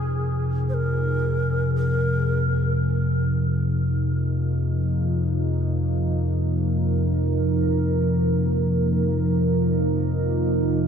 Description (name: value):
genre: dark ambient drone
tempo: free time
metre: none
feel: none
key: unclear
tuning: A4 = 440 Hz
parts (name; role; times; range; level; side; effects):
- breathy long shakuhachi; melody; 0.0-2.8 s; Ab4 to C5; -30 LUFS; right 1 dB; ping-pong delay
- deep dark ambient pad; sustained chords; 0.0-10.9 s; F3 to Bb4; -25 LUFS; right 1 dB; chorus, built-in reverb
- deep rumbling drone; drone; 0.0-10.9 s; F2 to C3; -22 LUFS; equal; built-in reverb
room: moderate huge ambient reverb, RT60 7.7 s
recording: dark, warm production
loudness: -20 LUFS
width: side -7 dB against mid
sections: 0.0-10.9 A section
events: fade-in on ambient pad 0.0-10.9; filter sweep on synth drone 0.0-10.9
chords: 0.0 Fm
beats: free time